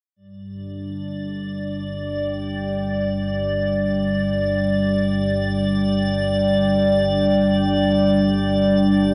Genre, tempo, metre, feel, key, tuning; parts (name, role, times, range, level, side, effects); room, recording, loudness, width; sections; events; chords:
dark ambient drone; free time; A4 = 440 Hz
dark analog pad; sustained chords; 0.2-9.1 s; G3 to G5; -22 LUFS; equal; chorus
deep rumbling drone; drone; 1.4-9.1 s; G1 to G2; -33 LUFS; equal; built-in reverb, lush chorus
icy glass pad; texture; 1.1-9.1 s; D5; -27 LUFS; equal; chorus, built-in reverb, shimmer reverb
wet cathedral reverb, RT60 5.0 s; in a vast, echoing space; -20 LUFS; mono
0.2-9.1 A section
fade-in on synth drone 0.2-9.1
0.2 G5